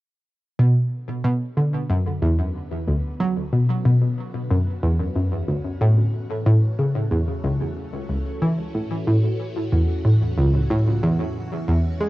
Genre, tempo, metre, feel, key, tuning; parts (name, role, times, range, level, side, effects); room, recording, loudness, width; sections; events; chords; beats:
ambient, sequencer-driven space music; 92 BPM; 4/4; straight; B minor; A4 = 440 Hz
phased string machine; sustained chords; 0.6-12.1 s; D3 to F#4; -34 LUFS; left 1 dB; ensemble chorus, phaser, cassette tape, shimmer reverb
analog pluck; riff; 0.6-12.1 s; C#2 to G#3; -19 LUFS; equal; chorus, cassette tape, tape echo
wet booth ambience, RT60 0.2 s; home recording on cassette; -19 LUFS; side -17 dB against mid
0.6-12.1 A section
fade-in on string machine 0.6-12.1
0.6 Bmadd9; 5.8 A6; 11.0 Eadd9
| 0.59 1.25 1.90 2.55 | 3.20 3.85 4.51 5.16 | 5.81 6.46 7.12 7.77 | 8.42 9.07 9.72 10.38 | 11.03 11.68